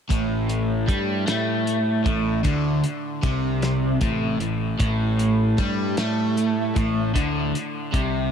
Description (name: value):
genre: psychedelic rock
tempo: 51 BPM (dotted quarters)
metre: 6/8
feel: straight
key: unclear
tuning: A4 = 440 Hz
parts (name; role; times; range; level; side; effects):
- crunchy overdriven guitar; riff; 0.1-8.3 s; A2 to A3; -22 LUFS; equal; phaser, analog delay
- fuzz picked electric bass; bass; 0.1-8.3 s; A1 to A2; -27 LUFS; equal; overdrive
- cloth-damped thuddy drum kit; drums; 0.1-8.1 s; hi-hat, kick drum, snare drum; -24 LUFS; equal; none
room: light reverb, small room ambience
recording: echo-heavy mix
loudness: -20 LUFS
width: side -7 dB against mid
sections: 0.1-8.3 A section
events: none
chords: 0.1 A5